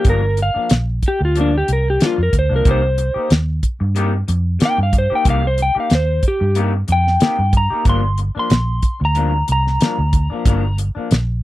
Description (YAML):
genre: straight-eighth soul blues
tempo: 92 BPM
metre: 4/4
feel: swing 54% on 16ths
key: G minor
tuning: A4 = 440 Hz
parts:
  - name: electric slide guitar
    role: melody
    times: 0.0-10.8 s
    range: D4 to C6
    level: -19 LUFS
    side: equal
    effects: slapback echo
  - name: electric guitar through a small old amp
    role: stabs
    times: 0.0-11.2 s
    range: G2 to G4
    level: -24 LUFS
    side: left 5 dB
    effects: none
  - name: damped 70s drum kit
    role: drums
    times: 0.0-11.3 s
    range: hi-hat, kick drum, snare drum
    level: -16 LUFS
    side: equal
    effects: none
  - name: vintage muted fingered electric bass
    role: bass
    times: 0.1-11.4 s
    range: G1 to G2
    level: -18 LUFS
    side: equal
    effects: none
room: little or no reverb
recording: dry, close 1970s-style studio recording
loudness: -14 LUFS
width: side -16 dB against mid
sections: 0.0-11.4 A section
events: electric slide guitar solo 0.0-11.4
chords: 0.0 Gm7; 2.7 Cm7; 7.9 Gm7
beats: | 0.06 0.71 1.36 2.01 | 2.66 3.31 3.96 4.61 | 5.26 5.91 6.56 7.21 | 7.86 8.51 9.16 9.81 | 10.46 11.11